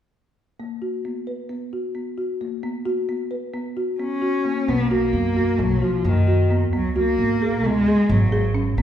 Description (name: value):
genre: contemporary instrumental, chamber music in an uneven meter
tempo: 264 BPM (eighths)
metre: 9/8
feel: straight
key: unclear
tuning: A4 = 438 Hz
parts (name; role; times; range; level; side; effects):
- folk marimba with soft mallets; arpeggios; 0.6-8.8 s; A#3 to B4; -24 LUFS; left 2 dB; none
- warm cello; melody; 4.0-8.8 s; D#3 to C#4; -22 LUFS; right 1 dB; none
- upright bass; bass; 4.7-8.8 s; G#1 to F#2; -21 LUFS; right 1 dB; none
room: wet recital hall reverb, RT60 1.5 s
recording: recorded in a church or concert hall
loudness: -19 LUFS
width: side -10 dB against mid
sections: 0.6-4.7 A section; 4.7-8.8 B section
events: none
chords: 0.6 B5; 4.7 Bmaj7; 6.7 C#7sus4